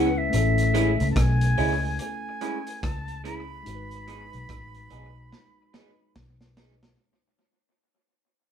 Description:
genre	lovers rock reggae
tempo	72 BPM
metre	4/4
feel	swing 61% on 16ths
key	unclear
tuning	A4 = 439 Hz
part	concert flute	melody	0.0-6.1 s	E5 to B5	-31 LUFS	left 1 dB	none
part	bell-like tine electric piano	accompaniment	0.0-7.0 s	G#3 to B4	-32 LUFS	left 2 dB	dub echo
part	electric guitar through a small old amp	stabs	0.0-6.7 s	F#3 to G#4	-27 LUFS	right 2 dB	phaser
part	vintage muted fingered electric bass	bass	0.0-7.0 s	G#1 to C#2	-26 LUFS	left 1 dB	none
part	crunchy breakbeat drum kit	drums	0.3-7.0 s	hi-hat, kick drum, rim click, snare drum	-30 LUFS	equal	none
room	moderate studio reverb, RT60 0.8 s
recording	band playing live in one room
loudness	-22 LUFS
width	side -8 dB against mid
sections	0.0-7.0 A section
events	fade-out 0.0-7.0; drum fill 5.3-7.0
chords	0.3 Amaj7; 3.7 G#m7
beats	| 0.33 1.16 1.99 2.83 | 3.66 4.49 5.32 6.16

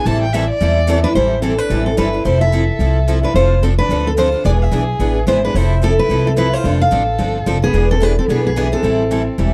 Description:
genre	acoustic string swing (jazz manouche)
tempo	219 BPM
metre	4/4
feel	swing 58% on 8ths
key	A minor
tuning	A4 = 440 Hz
part	dark violin	second line	0.0-9.5 s	B3 to A5	-26 LUFS	equal	none
part	picked steel-string acoustic guitar	accompaniment	0.0-9.5 s	E3 to A4	-24 LUFS	equal	none
part	picked steel-string acoustic guitar	accompaniment	0.1-9.5 s	E3 to B4	-28 LUFS	equal	none
part	upright bass	bass	0.1-9.5 s	E1 to E2	-19 LUFS	equal	none
part	picked steel-string acoustic guitar	melody	1.0-9.5 s	G#4 to F5	-20 LUFS	equal	none
room	light reverb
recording	dark, warm production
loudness	-15 LUFS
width	mono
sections	0.0-1.1 A section; 1.1-9.5 B section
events	violin solo 0.0-1.1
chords	0.1 Am7; 1.1 Am11; 2.2 Fmaj7; 3.3 Dm7/F; 4.4 E7; 5.5 Fmaj7; 6.6 Dm7/F; 7.7 E7; 8.8 Am7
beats	| 0.05 0.33 0.60 0.87 | 1.15 1.42 1.70 1.97 | 2.25 2.52 2.80 3.07 | 3.35 3.62 3.89 4.17 | 4.44 4.72 4.99 5.27 | 5.54 5.82 6.09 6.37 | 6.64 6.91 7.19 7.46 | 7.74 8.01 8.29 8.56 | 8.84 9.11 9.38

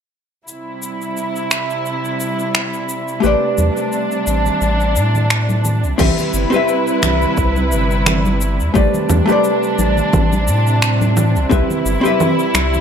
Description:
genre	sunset chillout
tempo	87 BPM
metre	4/4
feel	swing 55% on 16ths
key	C major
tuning	A4 = 440 Hz
part	muted studio string section	sustained chords	0.5-12.8 s	C3 to B4	-19 LUFS	right 1 dB	none
part	deep house drum kit	drums	0.5-12.8 s	congas, crash cymbal, finger snaps, shaker	-20 LUFS	right 1 dB	overdrive
part	vintage hollow-body jazz guitar	accompaniment	3.2-12.8 s	A3 to E5	-18 LUFS	moving between left 3 dB and right 3 dB	auto-pan, digital delay
part	round analog bass	bass	3.2-12.8 s	G1 to A2	-17 LUFS	equal	none
part	congas	percussion	3.6-12.8 s	none	-26 LUFS	left 1 dB	none
part	electronic kick drum	drums	6.0-11.7 s	none	-18 LUFS	equal	overdrive
room	moderate lush hall reverb, RT60 1.7 s, digital ambience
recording	none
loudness	-14 LUFS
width	side -8 dB against mid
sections	0.5-6.0 A section; 6.0-12.8 B section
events	none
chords	0.5 C; 3.2 Am11; 6.0 Cmaj7; 8.8 Am11; 11.5 Cmaj7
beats	| 0.48 1.17 1.86 2.55 | 3.24 3.93 4.62 5.31 | 6.00 6.68 7.38 8.06 | 8.75 9.44 10.13 10.82 | 11.51 12.20

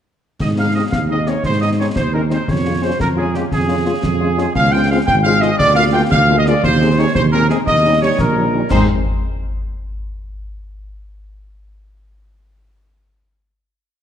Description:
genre	military-style march for wind band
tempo	116 BPM (dotted quarters)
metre	6/8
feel	straight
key	Ab major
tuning	A4 = 440 Hz
part	clear trumpet section	melody	0.4-8.8 s	G4 to G5	-17 LUFS	equal	none
part	mellow tuba	bass	0.4-8.9 s	Ab1 to Ab2	-17 LUFS	right 2 dB	none
part	concert snare drum, clash cymbals and concert bass drum	drums	0.4-8.9 s	none	-22 LUFS	left 1 dB	none
part	clear French horn section	accompaniment	0.6-8.8 s	G3 to F4	-23 LUFS	left 5 dB	none
room	moderate scoring stage reverb, RT60 1.7 s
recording	dark, warm production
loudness	-13 LUFS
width	side -9 dB against mid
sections	0.4-8.7 A section; 8.7-9.7 final chord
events	none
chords	0.4 Ab; 2.5 Db/F; 4.6 Dbmaj7; 5.6 Bb7/D; 6.6 Ab/Eb; 7.7 Eb7; 8.7 Ab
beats	| 0.41 0.92 | 1.44 1.96 | 2.48 3.00 | 3.52 4.04 | 4.56 5.08 | 5.59 6.11 | 6.63 7.15 | 7.67 8.19 | 8.70

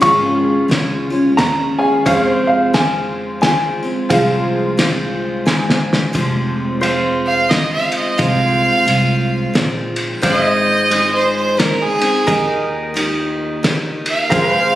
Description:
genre	honky-tonk and classic country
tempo	88 BPM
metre	3/4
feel	swing 60% on 8ths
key	F minor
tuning	A4 = 437 Hz
part	dark upright piano	melody	0.0-5.8 s	F5 to Db6	-17 LUFS	equal	none
part	picked steel-string acoustic guitar	accompaniment	0.0-14.8 s	F2 to Ab4	-19 LUFS	left 1 dB	none
part	tack piano	accompaniment	0.0-6.1, 14.3-14.8 s	Ab4 to Ab5	-23 LUFS	right 1 dB	none
part	pedal steel guitar	sustained chords	0.0-14.8 s	Bb4 to F5	-23 LUFS	equal	none
part	upright bass	bass	0.0-14.8 s	F1 to F2	-24 LUFS	right 1 dB	none
part	cloth-damped thuddy drum kit	drums	0.0-14.5 s	kick drum, ride cymbal, snare drum	-20 LUFS	equal	none
part	clear fiddle	second line	7.3-14.8 s	Ab4 to F5	-16 LUFS	right 2 dB	none
room	moderate large studio reverb, RT60 1.3 s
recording	recorded on a phone in the room, studio reverb, compression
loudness	-13 LUFS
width	side -14 dB against mid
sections	0.0-6.1 A section; 6.1-14.8 B section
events	honky-tonk piano fill 5.1-6.1; drum fill 5.5-6.1; fiddle solo 6.1-14.8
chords	0.0 Db; 2.1 Fm; 10.2 Ab; 12.3 Eb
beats	| 0.03 0.71 1.38 | 2.06 2.74 3.42 | 4.10 4.78 5.46 | 6.14 6.82 7.50 | 8.18 8.87 9.55 | 10.23 10.91 11.59 | 12.27 12.95 13.63 | 14.31

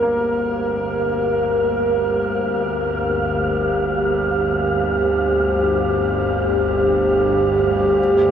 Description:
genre	dark ambient drone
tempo	free time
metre	none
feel	none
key	G minor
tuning	A4 = 445 Hz
part	dark analog pad	sustained chords	0.0-8.3 s	G3 to C5	-18 LUFS	equal	wide subtle chorus
part	clear baby grand piano	arpeggios	0.0-8.0 s	F2 to Bb3	-34 LUFS	equal	none
part	bowed-like drone	drone	0.0-8.3 s	G1 to D2	-24 LUFS	equal	built-in reverb
part	wind-like tuned noise texture	texture	0.0-8.3 s	D5 to F5	-26 LUFS	right 2 dB	built-in reverb
room	wet huge ambient reverb, RT60 9.5 s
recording	none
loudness	-17 LUFS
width	side -8 dB against mid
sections	0.0-8.3 A section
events	fade-in on synth drone 0.0-8.3; fade-in on synth texture 0.0-8.3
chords	0.0 Gm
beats	free time

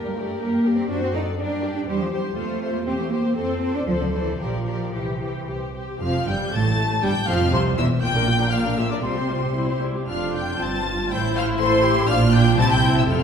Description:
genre	quick classical-period movement for string orchestra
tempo	110-124 BPM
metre	2/4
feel	rubato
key	F major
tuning	A4 = 440 Hz
part	rich chamber violin section	melody	0.0-13.2 s	Bb4 to A6	-29 LUFS	left 3 dB	none
part	rich studio violin section	second line	0.0-13.2 s	G4 to A5	-27 LUFS	left 2 dB	none
part	rich studio viola section	accompaniment	0.0-13.2 s	C3 to C5	-26 LUFS	left 1 dB	none
part	rich chamber double bass section	bass	0.0-13.2 s	E1 to G2	-26 LUFS	right 2 dB	none
part	rich symphonic cello section	bass	0.0-13.2 s	C2 to Eb4	-25 LUFS	right 1 dB	none
room	wet scoring stage reverb, RT60 1.8 s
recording	heard from further back in the room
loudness	-19 LUFS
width	side -7 dB against mid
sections	0.0-6.0 A section; 6.0-13.2 B section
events	none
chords	0.0 Gm; 0.9 D7/F#; 1.4 Gm; 1.9 C/E; 2.4 F; 2.9 C7/E; 3.4 F; 3.9 D7(no3); 4.4 Gm7/Bb; 4.9 C; 6.0 F; 7.0 F5; 8.0 Bb; 9.0 Csus4; 9.6 C; 10.1 F; 11.1 Am7; 12.1 Bb; 12.6 C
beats	0.41 | 0.90 1.39 | 1.88 2.37 | 2.86 3.36 | 3.87 4.39 | 4.93 5.47 | 6.01 6.53 | 7.04 7.53 | 8.03 8.53 | 9.05 9.56 | 10.08 10.60 | 11.11 11.61 | 12.10 12.59 | 13.11

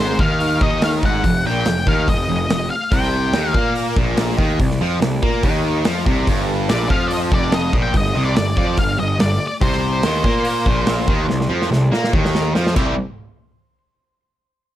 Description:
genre	blues rock power trio and southern rock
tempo	143 BPM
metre	4/4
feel	straight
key	unclear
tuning	A4 = 440 Hz
part	octave-fuzz lead guitar	melody	0.0-3.7, 6.7-12.5 s	C5 to G5	-23 LUFS	left 2 dB	distortion
part	distorted electric guitar	riff	0.0-12.9 s	F2 to G4	-20 LUFS	equal	overdrive
part	fuzz picked electric bass	bass	0.0-13.0 s	F1 to Bb2	-22 LUFS	equal	overdrive
part	big rock drum kit	drums	0.2-12.9 s	crash cymbal, hi-hat, kick drum, snare drum	-20 LUFS	equal	none
room	little or no reverb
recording	none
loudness	-15 LUFS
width	side -12 dB against mid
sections	0.0-13.0 A section; 13.0-14.7 B section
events	drum fill 11.3-13.0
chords	0.0 Fm11; 2.9 C5; 6.3 F13sus4; 9.6 Bbsus24; 12.8 C; 13.0 N.C.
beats	0.41 0.83 | 1.25 1.67 2.08 2.50 | 2.92 3.34 3.76 4.18 | 4.60 5.02 5.44 5.85 | 6.27 6.69 7.11 7.53 | 7.94 8.36 8.78 9.20 | 9.62 10.04 10.46 10.87 | 11.29 11.71 12.13 12.55

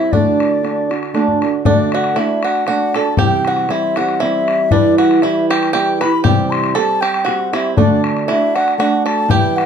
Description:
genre	celtic folk, Celtic waltz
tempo	118 BPM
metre	3/4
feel	swing 54% on 8ths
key	D mixolydian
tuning	A4 = 439 Hz
part	mellow baroque flute	melody	0.0-9.7 s	D5 to C6	-18 LUFS	left 2 dB	plate reverb
part	bluegrass banjo	second line	0.0-9.7 s	D4 to B4	-22 LUFS	right 5 dB	none
part	fingerpicked old ladder-braced acoustic guitar	accompaniment	0.0-9.7 s	C3 to D5	-16 LUFS	right 3 dB	none
part	bodhran	percussion	0.1-9.7 s	none	-20 LUFS	left 6 dB	none
room	wet small room ambience, RT60 0.5 s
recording	none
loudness	-13 LUFS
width	side -7 dB against mid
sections	0.0-1.6 A section; 1.6-9.7 B section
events	none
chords	0.1 D; 3.2 C; 4.7 Em; 6.2 C; 7.8 D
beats	| 0.12 0.63 1.14 | 1.65 2.16 2.67 | 3.18 3.69 4.20 | 4.71 5.22 5.73 | 6.24 6.75 7.25 | 7.76 8.27 8.78 | 9.29

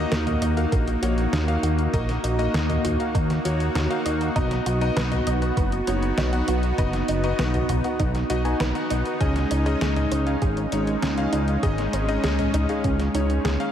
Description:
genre	synthwave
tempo	99 BPM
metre	4/4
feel	straight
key	Eb minor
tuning	A4 = 440 Hz
part	soft supersaw	sustained chords	0.0-13.7 s	Ab3 to Gb4	-27 LUFS	right 1 dB	sidechain pumping, shimmer reverb
part	wide unison pluck	arpeggios	0.0-13.7 s	Db4 to Eb5	-32 LUFS	right 3 dB	ping-pong delay, shimmer reverb
part	clear electric grand piano	stabs	0.0-13.7 s	Bb3 to Ab5	-29 LUFS	left 3 dB	ping-pong delay, shimmer reverb
part	fat analog bass	bass	0.0-13.6 s	F#1 to Eb2	-24 LUFS	equal	none
part	detuned 8-bit digital drum machine	drums	0.1-13.7 s	hi-hat, snare drum, toms	-31 LUFS	equal	overdrive
part	electronic kick drum	drums	0.7-13.0 s	none	-25 LUFS	equal	overdrive
room	moderate plate reverb, RT60 2.2 s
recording	dreamy mix soaked in reverb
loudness	-21 LUFS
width	side -9 dB against mid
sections	0.0-13.7 A section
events	none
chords	0.0 Ebm; 4.4 B; 9.2 Dbsus2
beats	0.12 0.72 1.33 | 1.93 2.54 3.15 3.75 | 4.36 4.96 5.57 6.18 | 6.78 7.39 7.99 8.60 | 9.21 9.81 10.42 11.03 | 11.63 12.24 12.84 13.45

